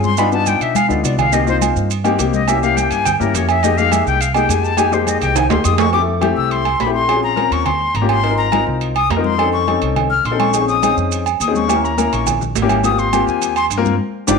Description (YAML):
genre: Afro-Cuban jazz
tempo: 208 BPM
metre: 4/4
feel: straight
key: F minor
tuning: A4 = 440 Hz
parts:
  - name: breathy bright concert flute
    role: second line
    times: 0.0-14.4 s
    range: A4 to F6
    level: -19 LUFS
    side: left 6 dB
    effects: none
  - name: warm baby grand piano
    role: accompaniment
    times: 0.0-14.4 s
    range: Ab3 to Bb4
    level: -19 LUFS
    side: left 8 dB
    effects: none
  - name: upright bass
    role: bass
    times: 0.0-14.4 s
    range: G1 to B2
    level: -21 LUFS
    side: right 2 dB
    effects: none
  - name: congas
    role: percussion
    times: 0.0-14.3 s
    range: none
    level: -26 LUFS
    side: left 8 dB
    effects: none
  - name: maracas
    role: percussion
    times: 0.0-5.9, 10.5-14.3 s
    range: none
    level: -26 LUFS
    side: right 17 dB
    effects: none
  - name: agogo bells and timbales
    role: percussion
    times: 0.2-14.3 s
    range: none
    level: -20 LUFS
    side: right 15 dB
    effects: none
room: moderate echo chamber reverb, RT60 1.3 s, small room ambience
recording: 1960s-style stereo with parts hard left and right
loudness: -14 LUFS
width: side -5 dB against mid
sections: 0.0-5.9 A section; 5.9-14.4 A section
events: flute solo 0.0-14.4; drum fill 0.8-1.3, 5.4-5.9; band accent 14.0-14.4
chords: 0.2 G7b13; 1.3 Cm7; 2.5 C7b9; 3.6 Fm11; 5.9 Fmaj9; 7.1 Bbm7; 7.7 Eb9; 8.2 Ab69; 9.4 F7b13; 10.5 Bbm11; 11.7 Eb7b9; 12.8 Abmaj13